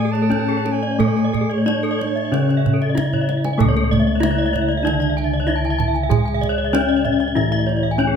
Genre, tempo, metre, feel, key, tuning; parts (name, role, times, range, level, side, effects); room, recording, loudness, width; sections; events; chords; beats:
Balinese gamelan; 86-96 BPM; 4/4; straight; C# pelog; A4 = 439 Hz
gamelan-type bronze metallophone; melody; 0.0-8.2 s; A3 to G#4; -22 LUFS; left 3 dB
warm soprano saxophone; second line; 0.0-3.1 s; C#5 to A5; -30 LUFS; right 7 dB; slapback echo
gamelan-type bronze metallophone; accompaniment; 0.0-8.2 s; C#3 to A3; -25 LUFS; right 3 dB
gamelan-type bronze metallophone; arpeggios; 0.0-8.2 s; G#4 to A5; -24 LUFS; left 3 dB
gamelan-type bronze metallophone; arpeggios; 0.0-7.9 s; G#4 to G#5; -27 LUFS; right 6 dB
gamelan-type bossed gongs; bass; 0.0-8.2 s; C#2 to A4; -23 LUFS; left 2 dB
kendang; percussion; 0.2-8.1 s; -23 LUFS; right 5 dB
moderate recital hall reverb, RT60 1.6 s; close, detailed microphones; -16 LUFS; side -7 dB against mid
0.0-3.6 A section; 3.6-8.2 B section
drum fill 3.1-3.6
0.30 | 0.99 1.66 2.32 2.97 | 3.60 4.23 4.86 5.48 | 6.11 6.74 7.37 7.99